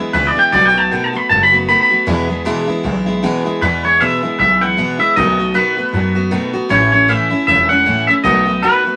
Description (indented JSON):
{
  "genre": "rockabilly",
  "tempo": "156 BPM",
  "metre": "4/4",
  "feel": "swing 58% on 8ths",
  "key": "E major",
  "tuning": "A4 = 445 Hz",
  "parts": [
    { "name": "picked steel-string acoustic guitar", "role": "accompaniment", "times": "0.0-9.0 s", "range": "E2 to F#4", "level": "-21 LUFS", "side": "equal", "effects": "none" },
    { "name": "twangy electric guitar", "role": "melody", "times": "0.1-9.0 s", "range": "B4 to B5", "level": "-15 LUFS", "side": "equal", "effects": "none" },
    { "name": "upright bass", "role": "bass", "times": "0.1-8.9 s", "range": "E1 to F#2", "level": "-22 LUFS", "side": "equal", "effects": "none" }
  ],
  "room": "moderate studio ambience, RT60 0.5 s",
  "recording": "vinyl crackle",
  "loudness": "-14 LUFS",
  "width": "mono",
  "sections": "0.0-3.6 A section; 3.6-9.0 B section",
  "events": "clean electric guitar solo 0.0-3.6",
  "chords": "0.0 E; 0.5 B7; 2.1 E; 5.2 B7; 6.7 A; 8.2 B7",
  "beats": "0.14 | 0.53 0.92 1.30 1.69 | 2.08 2.46 2.85 3.23 | 3.62 4.01 4.39 4.78 | 5.16 5.55 5.93 6.32 | 6.71 7.09 7.48 7.86 | 8.24 8.63"
}